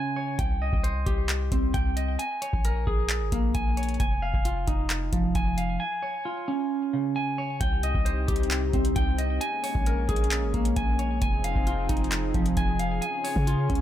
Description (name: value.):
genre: hip hop, trap.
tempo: 133 BPM.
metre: 4/4.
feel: half-time.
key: C phrygian.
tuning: A4 = 441 Hz.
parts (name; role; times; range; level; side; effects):
clean electric guitar; arpeggios; 0.0-13.8 s; Db3 to Ab5; -28 LUFS; right 1 dB; ping-pong delay.
long sustained 808-style bass; bass; 0.4-13.8 s; F1 to Db3; -28 LUFS; equal; none.
booming analog drum machine; drums; 0.4-13.8 s; handclaps, hi-hat, kick drum; -27 LUFS; equal; none.
warm analog pad; sustained chords; 7.6-13.8 s; C3 to Ab4; -34 LUFS; left 1 dB; chorus.
room: little or no reverb.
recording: none.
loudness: -24 LUFS.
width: side -11 dB against mid.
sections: 0.0-7.6 A section; 7.6-13.8 B section.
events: break 5.8-7.6.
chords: 0.4 Cm; 2.2 Bbm7; 4.0 Fm7; 5.8 Db; 7.6 Cm; 9.4 Bbm7; 11.2 Fm7; 13.0 Db.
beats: | 0.39 0.84 1.29 1.74 | 2.19 2.65 3.10 3.55 | 4.00 4.45 4.90 5.35 | 5.80 6.25 6.71 7.16 | 7.61 8.06 8.51 8.96 | 9.41 9.86 10.31 10.77 | 11.22 11.67 12.12 12.57 | 13.02 13.47.